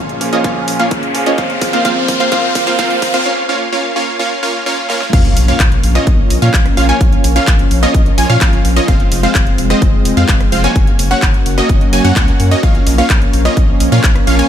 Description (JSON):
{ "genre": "EDM, festival progressive house", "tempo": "128 BPM", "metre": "4/4", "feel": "straight", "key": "Bb minor", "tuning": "A4 = 440 Hz", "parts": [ { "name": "bright grand piano", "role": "accompaniment", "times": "0.0-3.3 s", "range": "Bb2 to F4", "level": "-21 LUFS", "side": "right 2 dB", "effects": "sidechain pumping, tape echo" }, { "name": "lush unison pad", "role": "sustained chords", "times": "0.0-14.5 s", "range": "F2 to F5", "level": "-20 LUFS", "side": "equal", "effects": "chorus, vintage 12-bit sampler grit, sidechain pumping" }, { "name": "wide unison pluck", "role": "arpeggios", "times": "0.0-14.5 s", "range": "Eb5 to Ab5", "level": "-20 LUFS", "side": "equal", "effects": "sidechain pumping, tape echo" }, { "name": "supersaw stab", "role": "riff", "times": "0.0-14.5 s", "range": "Ab3 to Ab5", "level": "-17 LUFS", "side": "right 1 dB", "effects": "cassette tape, sidechain pumping, tape echo" }, { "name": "riser and impact", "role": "sound effects", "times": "0.0-7.0 s", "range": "none", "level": "-21 LUFS", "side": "left 1 dB", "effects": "none" }, { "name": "big-room dance drum kit", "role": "drums", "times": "0.1-14.5 s", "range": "crash cymbal, handclaps, hi-hat, rim click, snare drum", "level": "-20 LUFS", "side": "equal", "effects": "overdrive, studio reverb" }, { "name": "electronic kick drum", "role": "drums", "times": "0.4-14.1 s", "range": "none", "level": "-13 LUFS", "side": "equal", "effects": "studio reverb" }, { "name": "saturated sub bass", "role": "bass", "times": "5.1-14.4 s", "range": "F1 to Bb2", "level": "-15 LUFS", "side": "equal", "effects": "sidechain pumping" } ], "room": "light reverb", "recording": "high-pass filter", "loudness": "-10 LUFS", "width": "side -10 dB against mid", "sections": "0.0-5.1 A section; 5.1-14.5 B section", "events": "build-up 0.0-5.1; drum fill 0.0-3.3, 4.9; riser 0.0-3.3; filter sweep on supersaw synth 0.0-5.1; filter sweep on synth pluck 0.0-5.1; filter sweep on analog synth pad 0.0-5.1; filter sweep 0.0-5.1; break 3.3-5.1; drop 5.1-14.5; impact 5.1-7.0", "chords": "0.0 Bbm; 1.4 Fm; 3.3 Bbm; 8.9 Fm; 10.8 Gb; 12.6 Bbm" }